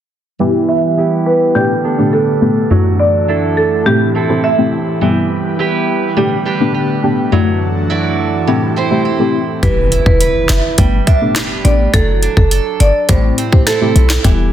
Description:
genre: dancehall.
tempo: 104 BPM.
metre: 4/4.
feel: straight.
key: E minor.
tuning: A4 = 440 Hz.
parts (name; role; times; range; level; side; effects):
deep mellow chord stab; accompaniment; 0.4-14.5 s; F#2 to G4; -15 LUFS; left 1 dB; chorus, phaser, sidechain pumping, low-pass filter.
airy breathy pad; sustained chords; 0.4-9.6 s; F#2 to B4; -19 LUFS; equal; chorus, sidechain pumping, low-pass filter.
picked steel-string acoustic guitar; arpeggios; 0.4-14.5 s; A2 to D5; -20 LUFS; right 5 dB; low-pass filter.
marimba with medium hard mallets; melody; 0.7-4.8, 9.6-14.1 s; G4 to E5; -16 LUFS; right 2 dB; low-pass filter, tape echo.
short 808-style bass; bass; 9.6-14.5 s; E1 to B1; -13 LUFS; equal; none.
island pop drum kit; drums; 9.6-14.4 s; handclaps, hi-hat, kick drum, rim click, snare drum; -13 LUFS; equal; none.
impact; sound effects; 9.6-11.9 s; none; -22 LUFS; left 1 dB; none.
room: light reverb, digital ambience.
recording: dense, heavily limited modern master.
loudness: -11 LUFS.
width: side -10 dB against mid.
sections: 0.4-9.6 A section; 9.6-14.5 B section.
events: filter sweep 0.4-9.6; impact 9.6-11.9.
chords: 0.4 Em; 1.6 Gadd9; 2.7 Dadd9/F#; 3.9 Am7; 5.0 Em; 6.2 Gadd9; 7.3 Dadd9/F#; 8.5 Am7; 9.6 Em; 10.8 Gadd9; 11.9 Dadd9/F#; 13.1 Am7.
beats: | 0.40 0.97 1.55 2.13 | 2.71 3.28 3.86 4.44 | 5.01 5.59 6.17 6.75 | 7.32 7.90 8.47 9.05 | 9.63 10.21 10.78 11.36 | 11.94 12.51 13.09 13.67 | 14.24.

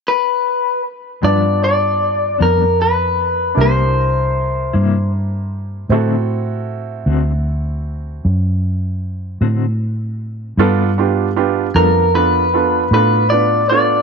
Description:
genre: slow blues.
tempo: 51 BPM (dotted quarters).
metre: 12/8.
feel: straight.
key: G mixolydian from 10.6 s.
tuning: A4 = 441 Hz.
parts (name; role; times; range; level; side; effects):
electric guitar through a small old amp; melody; 0.1-14.0 s; Bb4 to D5; -15 LUFS; left 3 dB; none.
clear upright piano; accompaniment; 1.2-14.0 s; B3 to A5; -20 LUFS; right 13 dB; none.
mellow electric guitar; accompaniment; 1.2-12.0 s; G2 to A4; -24 LUFS; left 12 dB; tremolo.
vintage muted fingered electric bass; bass; 1.2-14.0 s; C2 to A2; -18 LUFS; equal; none.
room: light reverb, digital ambience.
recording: 1960s-style stereo with parts hard left and right.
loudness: -14 LUFS.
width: side -5 dB against mid.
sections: 0.0-1.2 A section; 1.2-10.6 B section; 10.6-14.0 C section.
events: none.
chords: 0.0 N.C.; 1.2 G7; 3.6 C7; 5.9 D7; 10.6 G9.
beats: 0.07 | 1.24 2.40 3.57 4.74 | 5.91 7.08 8.25 9.42 | 10.59 11.75 12.92.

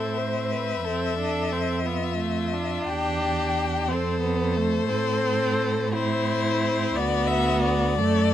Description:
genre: classical, slow romantic movement for string quartet.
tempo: 59 BPM (dotted quarters).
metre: 6/8.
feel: rubato.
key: unclear.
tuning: A4 = 439 Hz.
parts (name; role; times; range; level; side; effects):
warm violin; melody; 0.0-8.3 s; C5 to G5; -28 LUFS; left 8 dB; none.
warm violin; second line; 0.0-8.3 s; E4 to C5; -28 LUFS; left 2 dB; none.
rich viola; accompaniment; 0.0-8.3 s; A3 to D4; -28 LUFS; right 2 dB; none.
warm cello; bass; 0.0-8.3 s; D2 to A2; -28 LUFS; right 4 dB; none.
room: light reverb.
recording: close, detailed microphones.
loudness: -22 LUFS.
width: side -11 dB against mid.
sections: 0.0-8.3 A section.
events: none.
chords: 0.0 Am; 0.9 F; 2.9 Em7; 3.9 F; 4.9 Am; 7.0 D.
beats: | 0.85 1.87 | 2.88 3.91 | 4.89 5.93 | 6.96 7.99.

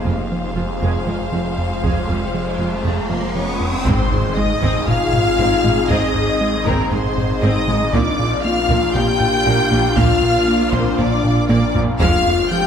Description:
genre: cinematic, hybrid orchestral and electronic film score.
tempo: 118 BPM.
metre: 4/4.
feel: straight.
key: unclear.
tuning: A4 = 440 Hz.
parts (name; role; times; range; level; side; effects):
warm symphonic violin section; second line; 0.0-12.7 s; Bb4 to G5; -23 LUFS; left 2 dB; none.
warm symphonic viola section; accompaniment; 0.0-12.7 s; F3 to Ab4; -26 LUFS; right 2 dB; none.
glassy FM pad; sustained chords; 0.0-12.7 s; Ab3 to F5; -24 LUFS; left 2 dB; ensemble chorus, built-in reverb.
snarling distorted saw bass; bass; 0.0-12.7 s; F1 to Bb1; -26 LUFS; equal; none.
riser and impact; sound effects; 1.8-5.9 s; none; -26 LUFS; equal; none.
rubbery square bass; riff; 0.1-12.7 s; F2 to Bb3; -23 LUFS; right 2 dB; none.
warm symphonic cello section; bass; 0.1-12.1 s; F2 to Bb2; -26 LUFS; right 2 dB; none.
warm symphonic double bass section; bass; 0.1-12.1 s; F1 to Bb1; -27 LUFS; right 3 dB; none.
taiko ensemble; drums; 1.8-12.5 s; none; -24 LUFS; equal; none.
warm symphonic violin section; melody; 3.3-12.7 s; Bb5 to G6; -25 LUFS; left 1 dB; none.
mellow French horn section; sustained chords; 3.4-12.7 s; Bb3 to G4; -23 LUFS; left 8 dB; none.
room: moderate scoring stage reverb, RT60 1.6 s.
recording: none.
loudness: -15 LUFS.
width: side -8 dB against mid.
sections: 0.0-3.9 A section; 3.9-12.7 B section.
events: riser 1.8-3.9; impact 3.9-5.9; drum fill 11.2-12.0.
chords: 0.0 Fm; 3.9 Ab; 7.9 Bb; 12.0 Fmadd9.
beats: 0.31 0.81 1.32 | 1.83 2.34 2.85 3.36 | 3.87 4.38 4.88 5.39 | 5.90 6.41 6.92 7.42 | 7.93 8.44 8.95 9.46 | 9.97 10.48 10.98 11.49 | 12.00 12.51.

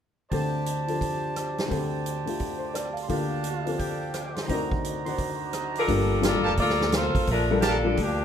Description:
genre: jazz, big band swing.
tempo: 172 BPM.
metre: 4/4.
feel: swing 64% on 8ths.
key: G minor.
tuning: A4 = 441 Hz.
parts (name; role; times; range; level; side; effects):
warm baby grand piano; accompaniment; 0.3-8.0 s; D2 to F5; -29 LUFS; left 3 dB; none.
clear trumpet section; stabs; 0.3-7.8 s; D4 to Eb6; -31 LUFS; right 3 dB; none.
swinging big-band drum kit; drums; 0.3-8.1 s; hi-hat, kick drum, rim click, snare drum; -31 LUFS; right 1 dB; none.
mellow saxophone section; melody; 5.8-8.2 s; F3 to D5; -24 LUFS; left 1 dB; none.
upright bass; bass; 5.9-8.2 s; F1 to D2; -28 LUFS; right 1 dB; none.
room: moderate large studio reverb, RT60 0.9 s.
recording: none.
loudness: -24 LUFS.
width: side -8 dB against mid.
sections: 0.3-5.9 A section; 5.9-8.2 B section.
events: none.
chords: 0.3 D7sus4; 3.1 Gm9/D; 4.5 D7b9b13; 5.9 Gm9.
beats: | 0.32 0.66 1.01 1.36 | 1.71 2.06 2.40 2.75 | 3.10 3.45 3.79 4.14 | 4.49 4.84 5.19 5.53 | 5.88 6.23 6.58 6.92 | 7.27 7.62 7.97.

